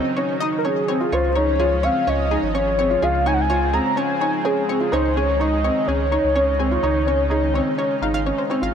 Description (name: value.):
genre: piano and strings electronica.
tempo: 126 BPM.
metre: 4/4.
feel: straight.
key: Db major.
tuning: A4 = 440 Hz.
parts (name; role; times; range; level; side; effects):
lush unison pad; sustained chords; 0.0-8.7 s; Db3 to Eb4; -27 LUFS; equal; chorus.
felt-muted upright piano; riff; 0.0-8.7 s; C4 to F4; -23 LUFS; equal; tape echo.
analog pluck; arpeggios; 0.2-8.7 s; Ab4 to F5; -29 LUFS; left 3 dB; chorus, tape echo.
warm velvety synth lead; melody; 0.6-8.3 s; Ab4 to Bb5; -22 LUFS; equal; chorus, tape echo.
warm sub bass; bass; 1.1-8.7 s; Ab1 to Db2; -24 LUFS; equal; none.
room: light reverb.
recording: none.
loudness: -18 LUFS.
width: side -8 dB against mid.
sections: 0.0-8.7 A section.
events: drop 0.0-8.7.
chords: 0.0 Absus4/Db; 1.1 Dbmaj7.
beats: 0.17 0.65 | 1.12 1.60 2.08 2.55 | 3.03 3.50 3.98 4.46 | 4.93 5.41 5.88 6.36 | 6.84 7.31 7.79 8.27.